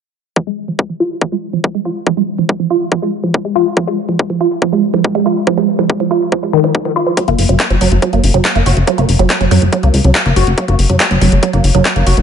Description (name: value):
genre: psychedelic trance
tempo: 141 BPM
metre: 4/4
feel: straight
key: unclear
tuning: A4 = 440 Hz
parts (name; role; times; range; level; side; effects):
- woody wave-folded pluck; riff; 0.4-12.1 s; Eb3 to Gb4; -14 LUFS; moving between left 3 dB and right 7 dB; chorus, auto-pan, sidechain pumping, tape echo
- electronic kick drum; drums; 0.4-11.9 s; none; -15 LUFS; left 1 dB; overdrive, high-pass filter on kick
- drum and bass drum kit; drums; 7.2-12.2 s; handclaps, hi-hat; -18 LUFS; left 2 dB; overdrive
- plucky analog bass; bass; 7.3-12.2 s; Gb1 to Gb2; -11 LUFS; left 1 dB; none
room: moderate lush hall reverb, RT60 1.8 s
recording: dreamy mix soaked in reverb, nothing above 11.0 kHz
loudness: -11 LUFS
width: side -7 dB against mid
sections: 0.4-12.2 A section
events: filter sweep on synth arpeggio sound 0.4-12.2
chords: 0.4 Ebsus4 (rootless); 7.2 Gb5